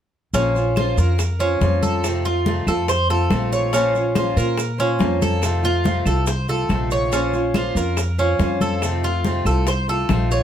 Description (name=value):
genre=latin, Cuban son and guajira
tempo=141 BPM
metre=4/4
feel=straight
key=Bb harmonic minor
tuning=A4 = 441 Hz
part: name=picked acoustic archtop guitar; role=accompaniment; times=0.3-10.4 s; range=C3 to C5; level=-23 LUFS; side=equal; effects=none
part: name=Cuban tres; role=arpeggios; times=0.3-10.4 s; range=Db4 to Db5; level=-23 LUFS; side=right 1 dB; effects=none
part: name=upright bass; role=bass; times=0.3-10.4 s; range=Bb1 to Bb2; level=-22 LUFS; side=equal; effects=none
part: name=bongos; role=percussion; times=0.3-10.4 s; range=none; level=-30 LUFS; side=left 6 dB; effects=none
part: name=congas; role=percussion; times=0.3-10.4 s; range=none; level=-26 LUFS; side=left 2 dB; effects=none
part: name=maracas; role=percussion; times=0.3-10.4 s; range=none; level=-35 LUFS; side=right 6 dB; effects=none
part: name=claves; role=percussion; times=0.8-10.3 s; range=none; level=-33 LUFS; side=right 7 dB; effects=none
room=light reverb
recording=close, detailed microphones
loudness=-17 LUFS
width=side -9 dB against mid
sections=0.3-10.4 A section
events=none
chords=0.3 Bbmadd9; 2.0 F7; 3.7 Bbmadd9; 5.4 F7; 7.1 Bbmadd9; 8.8 F7